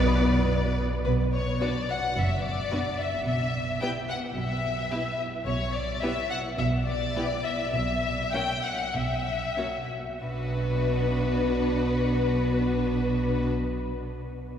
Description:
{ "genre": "quick classical-period movement for string orchestra", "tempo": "91-110 BPM", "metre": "4/4", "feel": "straight", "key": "B minor", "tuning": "A4 = 440 Hz", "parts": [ { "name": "rich studio violin section", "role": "melody", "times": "0.0-13.5 s", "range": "B4 to G5", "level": "-30 LUFS", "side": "left 4 dB", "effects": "none" }, { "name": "rich studio violin section", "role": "second line", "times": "0.0-13.5 s", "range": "F#4 to D5", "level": "-35 LUFS", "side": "left 2 dB", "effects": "none" }, { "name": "warm studio viola section", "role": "accompaniment", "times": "0.0-13.5 s", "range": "A#3 to E4", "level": "-34 LUFS", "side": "equal", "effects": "none" }, { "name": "warm studio cello section", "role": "bass", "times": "0.0-13.5 s", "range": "F#2 to B2", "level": "-31 LUFS", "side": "right 1 dB", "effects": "none" }, { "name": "warm studio double bass section", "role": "bass", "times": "0.0-13.5 s", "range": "F#1 to B1", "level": "-31 LUFS", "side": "right 1 dB", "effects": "none" } ], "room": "wet cathedral reverb, RT60 5.7 s", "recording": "heard from further back in the room", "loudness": "-25 LUFS", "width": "side -9 dB against mid", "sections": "0.0-1.1 A section; 1.1-10.2 B section; 10.2-12.8 C section", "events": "slowing down 4.4-10.2", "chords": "0.0 Bm; 3.3 E5/B; 7.7 N.C.; 10.2 Bm" }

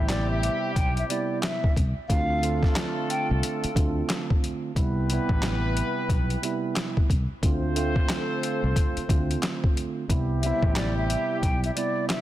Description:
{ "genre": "hip hop, boom-bap hip-hop", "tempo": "90 BPM", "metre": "4/4", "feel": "swing 62% on 16ths", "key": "C major", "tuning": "A4 = 440 Hz", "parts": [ { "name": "breathy concert flute", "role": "melody", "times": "0.0-3.3, 10.4-12.2 s", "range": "D5 to G5", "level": "-30 LUFS", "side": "left 1 dB", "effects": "high-pass filter, low-pass filter, digital delay" }, { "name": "mellow tine electric piano", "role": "accompaniment", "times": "0.0-12.2 s", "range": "C3 to F4", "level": "-30 LUFS", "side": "right 6 dB", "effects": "cassette tape, high-pass filter, low-pass filter" }, { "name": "warm horn section", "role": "stabs", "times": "0.0-12.2 s", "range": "G3 to C5", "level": "-33 LUFS", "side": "left 3 dB", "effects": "high-pass filter, low-pass filter, digital delay" }, { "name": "fingered electric bass", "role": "bass", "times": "0.0-11.7 s", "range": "A1 to D2", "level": "-27 LUFS", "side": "equal", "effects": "none" }, { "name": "boom bap sampler-style drum kit", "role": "drums", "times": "0.1-12.2 s", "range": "handclaps, hi-hat, kick drum, snare drum", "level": "-26 LUFS", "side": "equal", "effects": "none" } ], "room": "digital ambience", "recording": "dense, heavily limited modern master", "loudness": "-23 LUFS", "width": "side -14 dB against mid", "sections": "0.0-12.2 A section", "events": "none", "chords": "0.0 Cmaj7; 2.1 Dm7; 4.8 Cmaj7; 7.4 Dm7; 10.1 Cmaj7" }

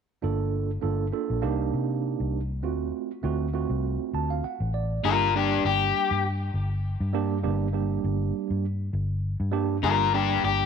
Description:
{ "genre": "straight-eighth soul blues", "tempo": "100 BPM", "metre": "4/4", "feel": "swing 54% on 16ths", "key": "G minor from 5.0 s", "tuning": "A4 = 439 Hz", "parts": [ { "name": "tine electric piano", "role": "accompaniment", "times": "0.2-10.7 s", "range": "G3 to A5", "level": "-29 LUFS", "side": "right 12 dB", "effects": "medium stereo tremolo" }, { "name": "vintage muted fingered electric bass", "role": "bass", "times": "0.2-10.7 s", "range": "G1 to C3", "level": "-28 LUFS", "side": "left 1 dB", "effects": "tube saturation" }, { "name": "overdriven semi-hollow guitar", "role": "melody", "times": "5.0-10.7 s", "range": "D4 to Bb4", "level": "-24 LUFS", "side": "left 10 dB", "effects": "none" } ], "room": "light reverb, digital ambience", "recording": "1960s-style stereo with parts hard left and right", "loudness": "-24 LUFS", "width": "side -6 dB against mid", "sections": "0.2-5.0 A section; 5.0-10.7 B section", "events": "tine electric piano fill 3.8-5.0", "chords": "0.2 Gm7; 1.4 Cm7; 2.6 D7#9; 5.0 Gm" }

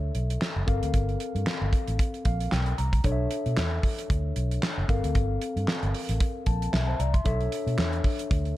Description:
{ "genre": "early-eighties boogie funk", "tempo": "114 BPM", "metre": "4/4", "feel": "swing 56% on 16ths", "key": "unclear", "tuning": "A4 = 440 Hz", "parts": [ { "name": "mellow tine electric piano", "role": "accompaniment", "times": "0.0-8.6 s", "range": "C4 to C6", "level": "-32 LUFS", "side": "left 3 dB", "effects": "wide subtle chorus" }, { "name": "vintage muted fingered electric bass", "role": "bass", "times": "0.0-8.5 s", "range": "F#1 to B2", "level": "-27 LUFS", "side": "equal", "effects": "none" }, { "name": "damped 70s drum kit", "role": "drums", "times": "0.1-8.6 s", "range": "handclaps, hi-hat, kick drum, snare drum", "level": "-27 LUFS", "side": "equal", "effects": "none" } ], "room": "small room ambience", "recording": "dark, warm production", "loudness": "-24 LUFS", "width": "side -15 dB against mid", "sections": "0.0-8.6 A section", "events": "tine electric piano fill 2.0-3.0, 6.2-7.3", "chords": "0.0 Bm11; 0.7 Gm11; 3.0 Bm11; 4.9 Gm11; 7.3 Bm11" }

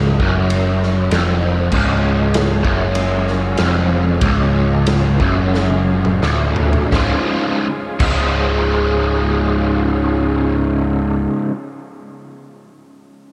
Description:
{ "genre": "psychedelic rock", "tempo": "84-98 BPM", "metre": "4/4", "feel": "straight", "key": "C# major", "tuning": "A4 = 439 Hz", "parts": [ { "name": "raw garage guitar", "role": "riff", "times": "0.0-11.5 s", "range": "C#2 to E#4", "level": "-19 LUFS", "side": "equal", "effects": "overdrive, rotary speaker" }, { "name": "picked electric bass", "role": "bass", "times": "0.0-11.3 s", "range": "C#1 to F#1", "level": "-22 LUFS", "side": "equal", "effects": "none" }, { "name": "raw garage drum kit", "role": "drums", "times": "0.2-8.2 s", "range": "crash cymbal, kick drum, ride cymbal, snare drum, toms", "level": "-24 LUFS", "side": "equal", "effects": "none" }, { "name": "bright tonewheel organ", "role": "sustained chords", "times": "1.7-10.6 s", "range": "G#3 to G#4", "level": "-28 LUFS", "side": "equal", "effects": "slow rotary speaker, overdrive" } ], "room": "moderate cathedral reverb, RT60 5.3 s", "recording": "dreamy mix soaked in reverb", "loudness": "-16 LUFS", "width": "mono", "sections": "0.0-6.9 A section; 6.9-9.8 B section", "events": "slowing down 1.7-6.9; drum fill 5.5-6.9", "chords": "0.0 C#" }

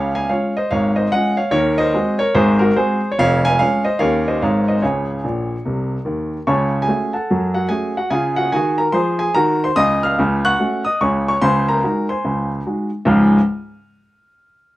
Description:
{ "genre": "jazz, stride piano", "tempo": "146 BPM", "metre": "4/4", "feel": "swing 64% on 8ths", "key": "Db major", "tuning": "A4 = 438 Hz", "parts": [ { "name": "warm grand piano", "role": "solo", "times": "0.0-13.4 s", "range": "F1 to Gb6", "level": "-15 LUFS", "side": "equal", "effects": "none" } ], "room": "moderate club reverb, RT60 0.8 s", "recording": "close, detailed microphones", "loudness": "-15 LUFS", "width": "side -16 dB against mid", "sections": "0.0-6.5 A section; 6.5-13.1 B section; 13.1-14.7 C section", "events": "grand piano fill 5.2-6.5", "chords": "0.0 Db; 1.5 Ab7/Eb; 3.2 Db/F; 4.0 Eb7; 4.4 Ab; 4.8 Db5; 6.5 Gbm/Db; 8.1 Ab7/Db; 9.8 Gbm/Db; 11.4 Ab7/Db; 13.1 Db" }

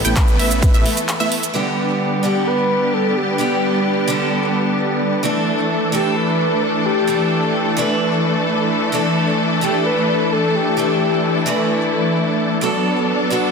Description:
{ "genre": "EDM, festival progressive house", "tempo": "130 BPM", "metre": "4/4", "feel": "straight", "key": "unclear", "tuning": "A4 = 439 Hz", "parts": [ { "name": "breathy flute-like synth lead", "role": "melody", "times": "0.0-13.5 s", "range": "F#4 to B4", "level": "-22 LUFS", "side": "left 1 dB", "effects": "analog chorus, ping-pong delay" }, { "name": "clear studio string section", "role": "sustained chords", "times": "0.0-13.5 s", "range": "D3 to A4", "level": "-23 LUFS", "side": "left 2 dB", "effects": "sidechain pumping" }, { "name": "wide unison pluck", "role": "arpeggios", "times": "0.0-1.3 s", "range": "E5 to G5", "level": "-25 LUFS", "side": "right 1 dB", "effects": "sidechain pumping, ping-pong delay" }, { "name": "supersaw chords", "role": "riff", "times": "0.0-13.5 s", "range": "E3 to G5", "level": "-19 LUFS", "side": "equal", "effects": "sidechain pumping, low-pass filter, ping-pong delay" }, { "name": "wide detuned saw bass", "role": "bass", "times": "0.0-0.9 s", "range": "A1", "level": "-22 LUFS", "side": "equal", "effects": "chorus, sidechain pumping" }, { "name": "big-room dance drum kit", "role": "drums", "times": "0.0-1.5 s", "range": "handclaps, hi-hat, ride cymbal, shaker", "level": "-23 LUFS", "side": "right 2 dB", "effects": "none" }, { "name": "electronic kick drum", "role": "drums", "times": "0.2-0.7 s", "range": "none", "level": "-15 LUFS", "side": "equal", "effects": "none" }, { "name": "picked acoustic archtop guitar", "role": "accompaniment", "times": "1.5-13.5 s", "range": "D3 to B4", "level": "-22 LUFS", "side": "right 2 dB", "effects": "sidechain pumping, ping-pong delay" } ], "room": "moderate lush hall reverb, RT60 1.9 s", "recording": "dense, heavily limited modern master", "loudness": "-15 LUFS", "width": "side -5 dB against mid", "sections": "0.0-1.5 A section; 1.5-13.5 B section", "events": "drop 0.0-1.5; break 1.1-1.5", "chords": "0.0 Asus2; 1.5 G; 5.2 Asus4; 12.6 Bm7" }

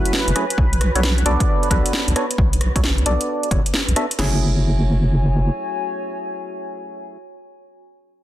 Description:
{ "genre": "UK garage, two-step garage", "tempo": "133 BPM", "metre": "4/4", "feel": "swing 65% on 16ths", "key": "F# minor", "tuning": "A4 = 440 Hz", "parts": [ { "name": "warm analog pad", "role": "sustained chords", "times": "0.0-4.2 s", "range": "B4", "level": "-29 LUFS", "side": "right 1 dB", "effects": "chorus, sidechain pumping" }, { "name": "percussive organ stab", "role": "stabs", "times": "0.0-7.2 s", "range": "F#3 to E5", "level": "-25 LUFS", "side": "right 1 dB", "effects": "analog chorus, digital delay" }, { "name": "deep soft wobble bass", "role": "bass", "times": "0.0-5.5 s", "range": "F#1 to B1", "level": "-18 LUFS", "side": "equal", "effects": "chorus" }, { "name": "warbly tape-like pad", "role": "texture", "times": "0.1-7.3 s", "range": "B3 to G#5", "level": "-31 LUFS", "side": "left 2 dB", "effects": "chorus, built-in reverb, sidechain pumping" }, { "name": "house drum kit", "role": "drums", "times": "0.1-4.2 s", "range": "hi-hat, rim click, snare drum", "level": "-22 LUFS", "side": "equal", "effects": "overdrive" }, { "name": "house drum kit", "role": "drums", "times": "0.6-4.3 s", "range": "crash cymbal, kick drum, snare drum", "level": "-21 LUFS", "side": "equal", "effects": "overdrive" } ], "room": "light reverb", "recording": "dense, heavily limited modern master", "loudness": "-17 LUFS", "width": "side -13 dB against mid", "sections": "0.0-4.2 A section; 4.2-7.8 B section", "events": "none", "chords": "0.0 F#m9; 0.6 Bm9; 4.2 F#m9" }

